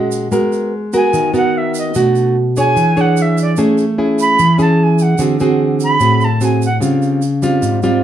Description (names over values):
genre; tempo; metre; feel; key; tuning
bossa nova; 148 BPM; 4/4; straight; unclear; A4 = 443 Hz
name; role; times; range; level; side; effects
jazz flute; melody; 0.0-6.8 s; D5 to B5; -16 LUFS; right 2 dB; none
nylon-string guitar; accompaniment; 0.0-8.0 s; G#2 to C#5; -13 LUFS; equal; none
tube shaker; percussion; 0.1-8.0 s; none; -32 LUFS; right 9 dB; none
room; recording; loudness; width
wet studio ambience, RT60 0.5 s; studio ambience; -12 LUFS; side -10 dB against mid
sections
0.3-8.0 A section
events
flute solo 0.3-8.0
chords
0.3 G#m9; 1.9 Bm7; 2.8 E6; 3.6 Amaj7; 5.2 D7#11; 6.8 C#maj7#11